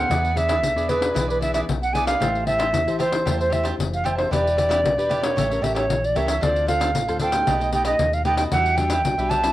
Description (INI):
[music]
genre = samba and choro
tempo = 114 BPM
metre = 4/4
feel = straight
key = unclear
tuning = A4 = 440 Hz
[part]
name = silver concert flute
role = melody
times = 0.0-9.5 s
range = B4 to A5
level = -22 LUFS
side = right 1 dB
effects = cassette tape, plate reverb
[part]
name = cavaquinho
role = accompaniment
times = 0.0-9.5 s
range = D4 to A5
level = -30 LUFS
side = right 4 dB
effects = plate reverb
[part]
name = nylon-string guitar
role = accompaniment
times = 0.0-9.5 s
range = A2 to C5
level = -29 LUFS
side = left 3 dB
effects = plate reverb
[part]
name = vintage muted fingered electric bass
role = bass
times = 0.0-9.5 s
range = E1 to E2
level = -27 LUFS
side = equal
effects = none
[part]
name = pandeiro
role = percussion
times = 0.1-9.5 s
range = none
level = -27 LUFS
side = left 4 dB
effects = none
[sound]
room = moderate studio reverb, RT60 0.6 s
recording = home recording on cassette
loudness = -19 LUFS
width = side -14 dB against mid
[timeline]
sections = 0.0-9.5 A section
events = none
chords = 0.1 E7; 2.2 Am7; 4.3 Em7; 5.4 A7b9; 6.4 Dm7; 7.5 Baug7; 8.5 Em9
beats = | 0.11 0.64 1.16 1.69 | 2.21 2.74 3.27 3.79 | 4.32 4.84 5.37 5.89 | 6.42 6.95 7.47 8.00 | 8.52 9.05